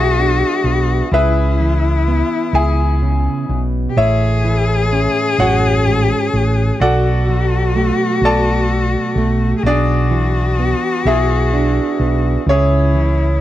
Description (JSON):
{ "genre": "acoustic folk-pop ballad", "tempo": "42 BPM (dotted quarters)", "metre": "6/8", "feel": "straight", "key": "A major", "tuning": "A4 = 440 Hz", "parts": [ { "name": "bright concert grand piano", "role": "melody", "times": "0.0-13.4 s", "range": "C#4 to A5", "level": "-20 LUFS", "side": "left 1 dB", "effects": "none" }, { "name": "warm cello", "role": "second line", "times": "0.0-13.4 s", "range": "E4 to G#4", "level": "-20 LUFS", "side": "left 4 dB", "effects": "none" }, { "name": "fingerpicked plugged-in steel-string acoustic guitar", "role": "accompaniment", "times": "0.0-13.4 s", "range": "F#2 to A4", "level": "-20 LUFS", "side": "right 4 dB", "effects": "none" }, { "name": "fingered electric bass", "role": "bass", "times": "0.0-13.4 s", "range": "A1 to C#2", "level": "-16 LUFS", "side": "equal", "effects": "none" } ], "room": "little or no reverb", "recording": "close, detailed microphones", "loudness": "-13 LUFS", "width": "side -13 dB against mid", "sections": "0.0-13.4 A section", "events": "none", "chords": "0.0 E7/B; 1.1 C#m7; 4.0 A6; 6.8 Bm7; 9.6 E7/B; 12.5 C#m" }